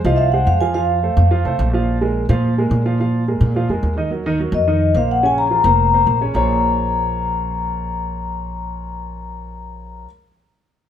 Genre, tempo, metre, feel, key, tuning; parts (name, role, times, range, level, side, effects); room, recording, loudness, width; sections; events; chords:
Afro-Cuban jazz; 214 BPM; 4/4; straight; Bb minor; A4 = 439 Hz
vibraphone with soft mallets; melody; 0.0-1.6, 4.5-10.0 s; Eb5 to Bb5; -19 LUFS; left 4 dB
upright bass; bass; 0.0-10.0 s; F1 to Bb2; -19 LUFS; equal
warm concert grand piano; accompaniment; 0.1-10.1 s; Db3 to F5; -23 LUFS; right 3 dB
light reverb; band playing live in one room; -15 LUFS; side -10 dB against mid
0.0-4.1 A section; 4.1-6.4 B section; 6.4-8.6 C section
0.0 Fm; 0.8 F; 1.9 Bb5; 4.1 Ebm; 4.7 F7sus4; 5.2 Bbm9; 5.8 Fsus4; 6.4 Bbm9